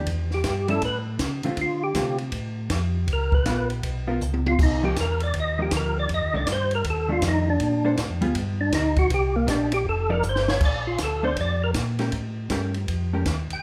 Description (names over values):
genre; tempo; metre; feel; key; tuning
soul jazz organ trio; 159 BPM; 4/4; swing 64% on 8ths; Bb major; A4 = 441 Hz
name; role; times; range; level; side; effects
hollow-body jazz guitar; accompaniment; 0.0-13.3 s; D3 to D5; -32 LUFS; equal; none
mellow tonewheel organ; bass; 0.0-13.6 s; F1 to D3; -29 LUFS; equal; slow rotary speaker
compact cocktail drum kit; drums; 0.1-13.6 s; crash cymbal, hi-hat, kick drum, ride cymbal, snare drum, toms; -31 LUFS; equal; none
percussive tonewheel organ; melody; 0.3-13.6 s; Bb3 to G5; -27 LUFS; equal; slow rotary speaker, chorus vibrato
room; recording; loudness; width
light reverb; band playing live in one room; -24 LUFS; mono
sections
0.0-10.6 A section; 10.6-13.6 A section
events
tonewheel organ solo 0.0-13.6; drum fill 4.2-4.6, 10.2-10.6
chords
0.1 Emadd11; 0.8 A; 1.6 Dm7; 3.1 Db6; 4.6 Cm11; 6.1 F13; 7.6 Bbmaj9; 8.4 G5; 9.1 Cm7; 9.9 F13; 10.6 Bbmaj7; 12.1 A7b9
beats
| 0.07 0.45 0.82 1.20 | 1.58 1.95 2.33 2.71 | 3.08 3.46 3.84 4.21 | 4.59 4.97 5.34 5.72 | 6.09 6.47 6.85 7.22 | 7.60 7.98 8.35 8.73 | 9.11 9.48 9.86 10.24 | 10.62 10.99 11.37 11.75 | 12.12 12.50 12.88 13.26